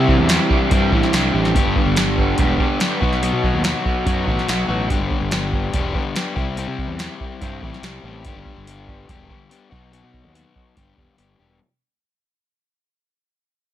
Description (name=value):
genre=indie rock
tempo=143 BPM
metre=4/4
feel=straight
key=G major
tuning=A4 = 440 Hz
part: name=overdriven semi-hollow guitar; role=riff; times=0.0-11.6 s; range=G2 to G4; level=-22 LUFS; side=left 6 dB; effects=none
part: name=overdriven semi-hollow guitar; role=riff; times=0.0-4.9 s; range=G2 to D4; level=-23 LUFS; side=right 7 dB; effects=lush chorus, slapback echo
part: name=fuzz fingered electric bass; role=bass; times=0.0-11.6 s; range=E1 to C3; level=-24 LUFS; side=right 1 dB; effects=overdrive
part: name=soft vintage rhythm box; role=drums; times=0.1-11.3 s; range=hi-hat, kick drum, snare drum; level=-21 LUFS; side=right 1 dB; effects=none
room=light reverb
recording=none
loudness=-17 LUFS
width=side -12 dB against mid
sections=0.0-11.6 A section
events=fade-out 0.0-11.6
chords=0.0 Cadd9; 1.5 G; 3.0 B; 4.9 G; 6.4 C; 8.2 G; 9.7 B; 10.8 G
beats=0.29 0.71 1.12 | 1.54 1.96 2.38 2.80 | 3.22 3.63 4.05 4.47 | 4.89 5.31 5.73 6.15 | 6.57 6.99 7.41 7.82 | 8.24 8.66 9.08 9.50 | 9.92 10.34 10.76 11.18